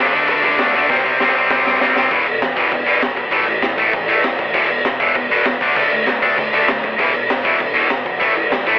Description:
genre	punk rock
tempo	197 BPM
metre	4/4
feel	straight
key	unclear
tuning	A4 = 439 Hz
part	distorted electric guitar	riff	0.0-8.8 s	E2 to D4	-16 LUFS	left 1 dB	overdrive
part	overdriven picked electric bass	bass	0.0-8.8 s	E1 to B2	-33 LUFS	equal	none
part	raw garage drum kit	drums	0.1-8.7 s	crash cymbal, kick drum, snare drum	-17 LUFS	equal	none
room	light reverb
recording	telephone sound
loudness	-13 LUFS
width	side -20 dB against mid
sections	0.0-2.1 A section; 2.1-8.8 B section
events	drum fill 0.9-2.1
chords	0.0 D5; 0.9 C5; 2.1 E5; 3.3 A5; 4.5 E5; 5.6 D5; 7.0 E5; 8.2 A5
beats	0.29 0.59 | 0.90 1.20 1.50 1.81 | 2.11 2.42 2.72 3.03 | 3.33 3.63 3.94 4.24 | 4.55 4.85 5.16 5.46 | 5.77 6.07 6.38 6.68 | 6.99 7.29 7.60 7.90 | 8.21 8.51

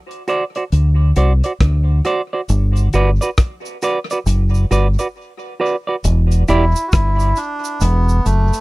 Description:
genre	dub reggae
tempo	68 BPM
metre	4/4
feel	swing 62% on 16ths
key	E minor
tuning	A4 = 440 Hz
part	damped 70s drum kit	drums	0.1-8.6 s	hi-hat, kick drum, rim click	-18 LUFS	equal	none
part	semi-hollow electric guitar	accompaniment	0.3-6.6 s	E4 to D5	-20 LUFS	right 3 dB	tape echo
part	deep dub fingered electric bass	bass	0.7-8.5 s	E1 to D2	-13 LUFS	equal	none
part	cabasa	percussion	2.5-8.6 s	none	-34 LUFS	right 8 dB	tape echo
part	melodica	melody	6.5-8.6 s	A3 to F#4	-20 LUFS	right 1 dB	tape echo
room	little or no reverb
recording	dry, close 1970s-style studio recording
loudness	-14 LUFS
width	side -22 dB against mid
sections	0.0-6.0 A section; 6.0-8.6 B section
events	break 0.0-2.5, 5.2-6.0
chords	0.0 D7; 2.5 Gmaj7; 6.0 Em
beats	0.72 1.61 | 2.49 3.38 4.27 5.16 | 6.04 6.93 7.81

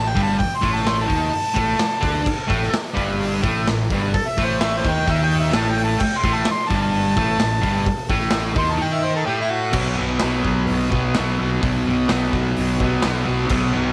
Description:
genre	garage rock duo or trio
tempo	128 BPM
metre	4/4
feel	straight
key	unclear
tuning	A4 = 444 Hz
part	clear harmonica	melody	0.0-9.7 s	E4 to C6	-25 LUFS	equal	overdrive
part	fuzz guitar	riff	0.0-13.9 s	G2 to D#4	-23 LUFS	equal	distortion
part	fuzz fingered electric bass	bass	0.0-13.9 s	G1 to D#2	-28 LUFS	equal	overdrive
part	raw garage drum kit	drums	0.2-13.6 s	crash cymbal, hi-hat, kick drum, snare drum	-27 LUFS	equal	none
room	light reverb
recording	none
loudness	-20 LUFS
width	mono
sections	0.0-9.8 A section; 9.8-13.9 B section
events	harmonica solo 0.0-9.8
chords	0.0 D#(#11)/G; 9.8 B5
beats	| 0.40 0.87 1.33 1.80 | 2.27 2.74 3.20 3.67 | 4.14 4.61 5.07 5.54 | 6.01 6.48 6.94 7.41 | 7.88 8.35 8.81 9.28 | 9.75 10.22 10.69 11.16 | 11.62 12.09 12.56 13.03 | 13.50

